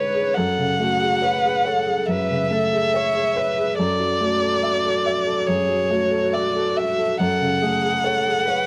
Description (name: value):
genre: neoclassical piano and strings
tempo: 70 BPM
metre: 4/4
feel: rubato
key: F# minor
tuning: A4 = 440 Hz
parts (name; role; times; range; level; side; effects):
- rich violin; melody; 0.0-8.7 s; C#5 to F#5; -23 LUFS; equal; none
- dark viola; accompaniment; 0.0-8.7 s; F#4 to C#5; -28 LUFS; equal; none
- warm upright piano; accompaniment; 0.0-8.7 s; F#2 to E5; -26 LUFS; equal; none
room: light reverb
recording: close, detailed microphones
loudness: -21 LUFS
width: mono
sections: 0.0-8.7 A section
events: none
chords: 0.4 F#madd9; 3.8 Dadd9/F#; 7.2 F#madd9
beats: | 0.36 1.22 2.07 2.93 | 3.78 4.62 5.47 6.33 | 7.19 8.04